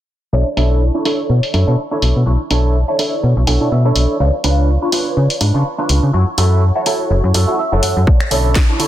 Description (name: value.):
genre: filtered disco house.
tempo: 124 BPM.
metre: 4/4.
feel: swing 56% on 16ths.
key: B minor.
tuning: A4 = 439 Hz.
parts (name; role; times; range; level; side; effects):
funky polysynth comp; accompaniment; 0.3-8.9 s; D3 to C#5; -20 LUFS; equal; chorus, phaser, sidechain pumping, low-pass filter.
slap-like FM bass; bass; 0.3-8.6 s; F#1 to C#3; -13 LUFS; equal; sidechain pumping, low-pass filter.
electric guitar with an envelope filter; riff; 0.6-8.9 s; C#4 to F#5; -21 LUFS; right 3 dB; sidechain pumping, low-pass filter.
house drum kit; drums; 0.6-8.9 s; finger snaps, hi-hat, snare drum; -20 LUFS; equal; sidechain pumping on hats, low-pass filter on hats, low-pass filter on snare, low-pass filter on room.
electronic kick drum; drums; 8.1-8.7 s; none; -12 LUFS; equal; none.
room: light reverb.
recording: dense, heavily limited modern master.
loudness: -12 LUFS.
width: side -12 dB against mid.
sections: 0.3-8.9 A section.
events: filter sweep 0.3-8.9; clean electric guitar fill 3.2-4.2, 7.1-8.1.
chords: 0.3 Bm11; 4.2 C#7b9; 6.1 F#m7; 8.1 Bm11.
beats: | 0.33 0.82 1.30 1.78 | 2.27 2.75 3.23 3.72 | 4.20 4.69 5.17 5.65 | 6.14 6.62 7.11 7.59 | 8.07 8.56.